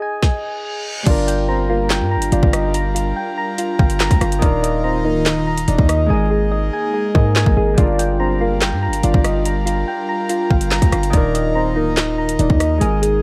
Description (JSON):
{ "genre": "hip hop, drill", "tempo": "143 BPM", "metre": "4/4", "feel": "half-time", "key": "G phrygian", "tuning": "A4 = 440 Hz", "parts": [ { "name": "soft electric-piano-like synth keys", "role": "arpeggios", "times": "0.0-13.2 s", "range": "Eb4 to Bb5", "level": "-24 LUFS", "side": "equal", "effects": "chorus, low-pass filter, tape echo" }, { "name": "drill drum kit", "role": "drums", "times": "0.2-13.1 s", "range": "crash cymbal, handclaps, hi-hat, kick drum, rim click, snare drum", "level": "-20 LUFS", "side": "equal", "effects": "none" }, { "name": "reverse cymbal", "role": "sound effects", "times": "0.4-1.1 s", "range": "none", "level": "-31 LUFS", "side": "equal", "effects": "none" }, { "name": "Celtic harp", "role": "accompaniment", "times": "1.0-13.2 s", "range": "Eb3 to Eb5", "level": "-28 LUFS", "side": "equal", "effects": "low-pass filter" }, { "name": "soft octave-layered synth lead", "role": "second line", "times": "1.1-12.8 s", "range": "Bb4 to F5", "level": "-28 LUFS", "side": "equal", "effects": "chorus, tape echo" }, { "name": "airy breathy pad", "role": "sustained chords", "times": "1.1-13.2 s", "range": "Eb3 to Bb4", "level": "-29 LUFS", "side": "equal", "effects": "chorus" }, { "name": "hard-hitting 808-style bass", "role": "bass", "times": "1.1-13.2 s", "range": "D1 to Ab2", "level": "-22 LUFS", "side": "equal", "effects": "none" } ], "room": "digital ambience", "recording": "vinyl crackle", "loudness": "-17 LUFS", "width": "mono", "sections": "0.0-1.1 A section; 1.1-13.2 B section", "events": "reverse cymbal 0.4-1.1; hi-hats muted 6.1-7.8", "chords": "0.0 Ab5; 1.1 Gm7; 4.4 Ebsus2; 6.1 Absus2; 7.8 Gm7; 11.1 Ebsus2" }